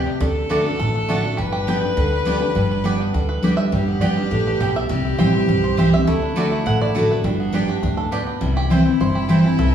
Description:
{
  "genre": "bluegrass",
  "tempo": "205 BPM",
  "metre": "4/4",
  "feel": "straight",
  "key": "G major",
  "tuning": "A4 = 440 Hz",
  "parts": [
    { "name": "bluegrass banjo", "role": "melody", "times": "0.0-9.7 s", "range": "D3 to G5", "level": "-28 LUFS", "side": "right 3 dB", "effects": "none" },
    { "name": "clear fiddle", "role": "second line", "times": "0.0-9.7 s", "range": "D4 to B4", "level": "-26 LUFS", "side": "equal", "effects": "none" },
    { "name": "picked steel-string acoustic guitar", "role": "accompaniment", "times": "0.0-9.7 s", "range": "G2 to G4", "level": "-19 LUFS", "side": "left 1 dB", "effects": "none" },
    { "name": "upright bass", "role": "bass", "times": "0.0-9.7 s", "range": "G1 to D2", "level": "-23 LUFS", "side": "right 1 dB", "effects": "none" },
    { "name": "mandolin", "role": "stabs", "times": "0.5-9.4 s", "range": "A3 to A5", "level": "-30 LUFS", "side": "right 4 dB", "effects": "none" }
  ],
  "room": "wet large studio reverb, RT60 1.2 s",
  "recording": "heard from further back in the room, studio reverb",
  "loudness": "-17 LUFS",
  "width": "side -9 dB against mid",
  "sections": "0.0-8.4 A section; 8.4-9.7 A section",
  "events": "five-string banjo solo 0.0-9.7",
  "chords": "0.2 D; 1.4 G; 4.9 C; 6.1 D; 7.2 G; 8.4 C"
}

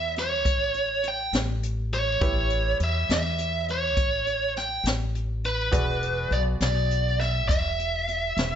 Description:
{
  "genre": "slow blues",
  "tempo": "68 BPM (dotted quarters)",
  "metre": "12/8",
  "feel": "straight",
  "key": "unclear",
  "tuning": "A4 = 440 Hz",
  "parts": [
    { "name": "biting lead guitar", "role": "melody", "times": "0.0-8.6 s", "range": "B4 to G5", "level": "-25 LUFS", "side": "right 2 dB", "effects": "overdrive, slapback echo" },
    { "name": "bright grand piano", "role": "accompaniment", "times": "0.0-8.6 s", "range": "E4 to D5", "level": "-35 LUFS", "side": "right 2 dB", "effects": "none" },
    { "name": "upright bass", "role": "bass", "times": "0.0-8.6 s", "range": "E1 to E2", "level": "-28 LUFS", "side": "equal", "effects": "none" },
    { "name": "jazz brush drum kit", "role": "drums", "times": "0.2-8.5 s", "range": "hi-hat, kick drum, snare drum", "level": "-27 LUFS", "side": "left 1 dB", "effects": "none" }
  ],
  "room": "light reverb",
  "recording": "nothing above 7.9 kHz",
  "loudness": "-23 LUFS",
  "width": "side -9 dB against mid",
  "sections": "0.0-8.6 A section",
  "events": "none",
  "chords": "0.0 A9; 5.7 E9"
}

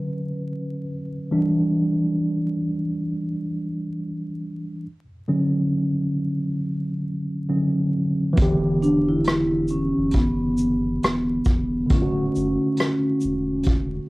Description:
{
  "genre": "lo-fi hip hop",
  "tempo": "68 BPM",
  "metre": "4/4",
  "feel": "swing 60% on 16ths",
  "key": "E dorian",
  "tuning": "A4 = 438 Hz",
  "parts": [
    { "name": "mellow tine electric piano", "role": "accompaniment", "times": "0.0-14.1 s", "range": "D3 to B4", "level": "-23 LUFS", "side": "equal", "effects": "medium stereo tremolo, cassette tape" },
    { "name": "soft dub sub bass", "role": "bass", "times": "8.4-14.0 s", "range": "D1 to F#1", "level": "-32 LUFS", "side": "equal", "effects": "none" },
    { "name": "vintage brush drum kit", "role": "drums", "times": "8.4-13.9 s", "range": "hi-hat, kick drum, rim click, shaker", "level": "-21 LUFS", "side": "equal", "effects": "cassette tape" },
    { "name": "vibraphone with soft mallets", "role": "melody", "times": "8.8-13.6 s", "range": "B3 to E4", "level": "-22 LUFS", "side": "equal", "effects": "analog delay, plate reverb" }
  ],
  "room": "wet studio ambience, RT60 0.5 s",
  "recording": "home recording on cassette, vinyl crackle",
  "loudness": "-20 LUFS",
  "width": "side -21 dB against mid",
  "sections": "0.0-8.4 A section; 8.4-14.1 B section",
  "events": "tine electric piano solo 0.0-8.4",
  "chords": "0.0 Dmaj7; 1.3 Em7; 4.8 Dmaj7; 8.4 Em7; 11.9 Dmaj7"
}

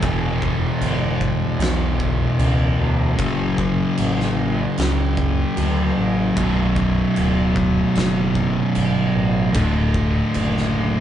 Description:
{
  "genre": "stoner and doom metal",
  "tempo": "76 BPM",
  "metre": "4/4",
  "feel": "straight",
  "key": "B minor",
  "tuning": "A4 = 440 Hz",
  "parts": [
    { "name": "thick fuzz guitar", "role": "riff", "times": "0.0-11.0 s", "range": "B1 to F#3", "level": "-19 LUFS", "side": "equal", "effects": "distortion" },
    { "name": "growling picked electric bass", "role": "bass", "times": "0.0-11.0 s", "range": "B0 to D2", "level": "-23 LUFS", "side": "equal", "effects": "overdrive" },
    { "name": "oversized low-tuned drum kit", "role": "drums", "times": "0.0-10.7 s", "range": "crash cymbal, kick drum, snare drum", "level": "-26 LUFS", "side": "right 1 dB", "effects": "none" }
  ],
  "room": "light reverb",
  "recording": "band playing live in one room, nothing above 10.8 kHz",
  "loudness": "-17 LUFS",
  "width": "side -10 dB against mid",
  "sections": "0.0-11.0 A section",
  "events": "none",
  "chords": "0.0 Em; 3.2 F#m; 6.4 Bm; 9.5 D"
}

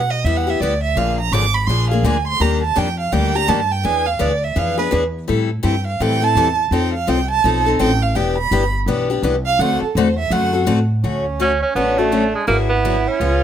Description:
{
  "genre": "acoustic string swing (jazz manouche)",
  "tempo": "167 BPM",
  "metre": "4/4",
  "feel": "swing 62% on 8ths",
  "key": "unclear",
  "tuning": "A4 = 437 Hz",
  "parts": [
    { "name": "warm violin", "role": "second line", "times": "0.0-13.4 s", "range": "C#4 to D6", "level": "-20 LUFS", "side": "right 6 dB", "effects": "none" },
    { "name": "upright bass", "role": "bass", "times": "0.0-13.4 s", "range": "E1 to B2", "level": "-20 LUFS", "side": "equal", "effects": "none" },
    { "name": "picked steel-string acoustic guitar", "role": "accompaniment", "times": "0.3-13.4 s", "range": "C#3 to A4", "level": "-20 LUFS", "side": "left 5 dB", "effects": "none" },
    { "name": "clear tenor saxophone", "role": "melody", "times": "11.4-13.4 s", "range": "G#3 to C#4", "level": "-18 LUFS", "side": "right 3 dB", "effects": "none" }
  ],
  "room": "light reverb",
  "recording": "none",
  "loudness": "-15 LUFS",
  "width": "side -9 dB against mid",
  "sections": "0.0-11.0 A section; 11.0-13.4 B section",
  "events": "violin solo 0.0-11.0",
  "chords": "0.0 G6; 1.0 Bb7; 2.4 Ebmaj9; 3.8 E7b9; 5.3 Am7; 6.7 F7#11; 8.2 Em7; 9.6 D9; 11.0 Dmaj7; 12.5 G#m7b5"
}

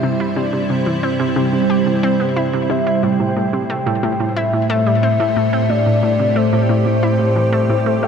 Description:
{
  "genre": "ambient, sequencer-driven space music",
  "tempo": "90 BPM",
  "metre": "4/4",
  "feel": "straight",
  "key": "unclear",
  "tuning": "A4 = 440 Hz",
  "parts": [
    { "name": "soft octave-layered synth lead", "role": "melody", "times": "0.0-8.1 s", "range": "C5 to G5", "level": "-20 LUFS", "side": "left 1 dB", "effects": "chorus, tremolo, ping-pong delay" },
    { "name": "evolving wavetable pad", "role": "sustained chords", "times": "0.0-8.1 s", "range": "A2 to C5", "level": "-17 LUFS", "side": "right 1 dB", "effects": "ensemble chorus, built-in reverb" },
    { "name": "analog pluck", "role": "riff", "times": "0.0-8.1 s", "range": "A2 to G4", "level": "-21 LUFS", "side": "equal", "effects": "chorus, ping-pong delay" }
  ],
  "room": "wet huge ambient reverb, RT60 8.1 s",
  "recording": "dark, warm production",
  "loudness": "-14 LUFS",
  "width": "side -7 dB against mid",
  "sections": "0.0-8.1 A section",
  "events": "none",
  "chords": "0.0 C; 3.0 Am7"
}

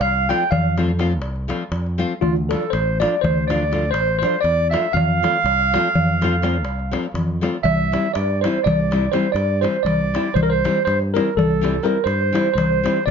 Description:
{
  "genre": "balkan folk, Balkan wedding band",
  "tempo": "243 BPM (eighths)",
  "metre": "11/8",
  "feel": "straight",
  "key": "unclear",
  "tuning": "A4 = 440 Hz",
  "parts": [
    { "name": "tine electric piano", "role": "melody", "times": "0.0-13.1 s", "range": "F4 to G5", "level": "-22 LUFS", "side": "equal", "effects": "medium stereo tremolo" },
    { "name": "clear clarinet", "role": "second line", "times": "0.0-13.1 s", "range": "F4 to G5", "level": "-24 LUFS", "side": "right 5 dB", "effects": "none" },
    { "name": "fingered electric bass", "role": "bass", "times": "0.0-13.1 s", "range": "A1 to G2", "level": "-22 LUFS", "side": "equal", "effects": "none" },
    { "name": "darbuka", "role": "percussion", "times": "0.0-13.1 s", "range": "none", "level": "-24 LUFS", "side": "left 2 dB", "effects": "none" },
    { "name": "nylon-string guitar", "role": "accompaniment", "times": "0.3-13.0 s", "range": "E3 to F4", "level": "-23 LUFS", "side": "left 4 dB", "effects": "none" }
  ],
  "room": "moderate studio reverb, RT60 0.6 s",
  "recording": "dark, warm production, nothing above 7.5 kHz",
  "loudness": "-17 LUFS",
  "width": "side -6 dB against mid",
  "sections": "0.0-7.7 A section; 7.7-13.1 B section",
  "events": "none",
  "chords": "0.0 F; 2.2 Dm; 4.9 F; 7.7 C"
}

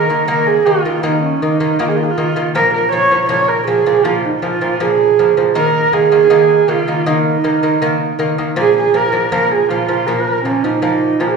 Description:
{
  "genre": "mongolian traditional, Mongolian folk",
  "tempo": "80 BPM",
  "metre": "4/4",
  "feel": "straight",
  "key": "Bb yu mode",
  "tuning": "A4 = 439 Hz",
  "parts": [
    { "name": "warm horsehead fiddle", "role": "melody", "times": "0.0-11.4 s", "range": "Db4-20c to Db5", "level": "-13 LUFS", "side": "right 5 dB", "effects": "none" },
    { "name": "lute", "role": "arpeggios", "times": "0.0-11.4 s", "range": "Bb2 to Bb3", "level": "-17 LUFS", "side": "left 1 dB", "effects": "none" }
  ],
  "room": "wet recital hall reverb, RT60 1.3 s",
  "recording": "recorded in a church or concert hall, small room ambience",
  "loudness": "-12 LUFS",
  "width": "side -4 dB against mid",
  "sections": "0.0-11.4 A section",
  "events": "none",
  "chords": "0.0 Eb5; 2.5 Bb5; 5.6 Eb5; 8.6 Bb5"
}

